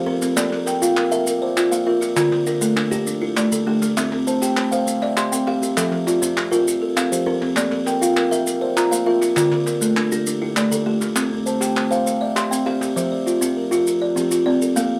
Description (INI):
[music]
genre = southern african traditional, mbira-style interlocking cycle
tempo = 133 BPM (dotted quarters)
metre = 12/8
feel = straight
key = F major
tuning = A4 = 440 Hz
[part]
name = buzzing kalimba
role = arpeggios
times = 0.0-15.0 s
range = D3 to A5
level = -25 LUFS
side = equal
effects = none
[part]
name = kalimba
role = arpeggios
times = 0.0-15.0 s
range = D3 to C6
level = -22 LUFS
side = equal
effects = none
[part]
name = group handclap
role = percussion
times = 0.2-12.9 s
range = none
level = -28 LUFS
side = equal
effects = none
[part]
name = maracas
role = percussion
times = 0.2-14.9 s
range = none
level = -30 LUFS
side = equal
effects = none
[sound]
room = moderate small room reverb, RT60 0.5 s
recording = none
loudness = -20 LUFS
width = mono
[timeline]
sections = 0.0-13.0 A section; 13.0-15.0 B section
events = none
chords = 0.4 Bb; 2.2 Dm; 4.0 C; 5.8 F; 7.6 Bb; 9.4 Dm; 11.2 C; 13.0 F5